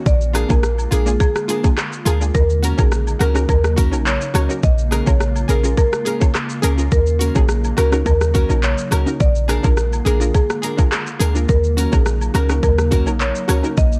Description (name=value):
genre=dancehall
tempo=105 BPM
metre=4/4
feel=straight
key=Eb minor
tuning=A4 = 441 Hz
part: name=analog pluck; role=accompaniment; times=0.0-13.8 s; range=Bb3 to Db5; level=-28 LUFS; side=equal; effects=chorus
part: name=glassy FM pad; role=sustained chords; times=0.0-14.0 s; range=Db3 to F4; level=-30 LUFS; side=equal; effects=ensemble chorus, built-in reverb, sidechain pumping
part: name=marimba with medium mallets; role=melody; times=0.1-14.0 s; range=Ab4 to Eb5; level=-26 LUFS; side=equal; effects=tape echo
part: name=clean 808-style bass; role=bass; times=0.1-14.0 s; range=Bb1 to Eb2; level=-20 LUFS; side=equal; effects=none
part: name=island pop drum kit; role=drums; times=0.1-14.0 s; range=handclaps, hi-hat, kick drum, rim click, shaker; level=-21 LUFS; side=equal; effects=vintage 12-bit sampler grit
part: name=flamenco guitar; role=arpeggios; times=0.3-13.7 s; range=Db4 to Bb4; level=-30 LUFS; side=equal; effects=tape echo
part: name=cabasa and woodblock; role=percussion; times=0.3-13.6 s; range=none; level=-33 LUFS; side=equal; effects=none
room=little or no reverb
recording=dark, warm production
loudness=-17 LUFS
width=mono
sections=0.0-14.0 A section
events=none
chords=0.1 Bb7; 2.3 Ebm7; 4.6 Bbm7; 6.9 Ebm7; 9.2 Bb7; 11.5 Ebm7